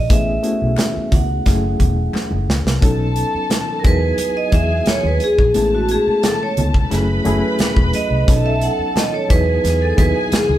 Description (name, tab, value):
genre	lush 1970s-style soul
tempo	88 BPM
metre	4/4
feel	straight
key	F# dorian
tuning	A4 = 440 Hz
part	vibraphone with hard mallets	melody	0.0-10.6 s	F#4 to F#5	-20 LUFS	right 2 dB	none
part	reed electric piano	accompaniment	0.0-10.6 s	F#3 to A4	-22 LUFS	left 2 dB	overdrive, fast tremolo
part	vintage muted fingered electric bass	bass	0.0-10.6 s	E1 to E2	-20 LUFS	equal	none
part	modern studio drum kit	drums	0.1-10.5 s	hi-hat, kick drum, snare drum	-18 LUFS	equal	none
part	congas	percussion	0.1-10.6 s	none	-28 LUFS	right 2 dB	none
part	group handclap	percussion	0.8-2.3 s	none	-36 LUFS	left 3 dB	none
part	muted studio string section	second line	2.8-10.6 s	A3 to B5	-25 LUFS	left 1 dB	none
room	moderate stone room reverb, RT60 1.3 s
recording	band playing live in one room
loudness	-14 LUFS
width	side -13 dB against mid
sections	0.0-2.8 A section; 2.8-10.6 B section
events	drum fill 2.1-2.8; vibraphone solo 2.8-10.6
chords	0.1 Amaj7; 1.5 F#m7; 2.8 B7; 3.8 Emaj9; 5.6 Amaj7; 6.9 F#m7; 8.3 B7; 9.3 Emaj9